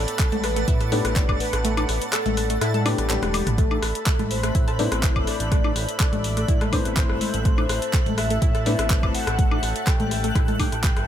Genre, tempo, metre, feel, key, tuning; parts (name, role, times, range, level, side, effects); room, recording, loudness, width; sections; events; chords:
progressive house; 124 BPM; 4/4; straight; A4 = 440 Hz
soft octave-layered synth lead; melody; 0.0-11.1 s; G4 to G5; -30 LUFS; left 1 dB; chorus, digital delay
lush unison pad; sustained chords; 0.0-11.1 s; A4 to B5; -33 LUFS; right 1 dB; chorus, phaser, sidechain pumping
felt-muted upright piano; stabs; 0.0-10.6 s; A2 to D5; -31 LUFS; left 4 dB; sidechain pumping, digital delay
fat analog bass; bass; 0.0-11.1 s; E1 to A2; -27 LUFS; right 1 dB; sidechain pumping
twinkling granular texture; texture; 0.0-11.1 s; A5 to F#6; -37 LUFS; right 2 dB; built-in reverb, sidechain pumping
deep house drum kit; drums; 0.1-11.1 s; handclaps, hi-hat, toms, woodblock; -29 LUFS; left 1 dB
wide unison pluck; arpeggios; 0.2-10.7 s; A3 to A5; -31 LUFS; equal; sidechain pumping, digital delay
electronic kick drum; drums; 0.2-10.9 s; -22 LUFS; right 1 dB
electronic rim click and congas; percussion; 0.2-11.1 s; -30 LUFS; left 3 dB; sidechain pumping on snare, sidechain pumping on perc
digital ambience; -20 LUFS; side -10 dB against mid
0.0-11.1 A section
kick drops out 1.6-3.6; drum fill 3.1-3.6
0.0 Gadd9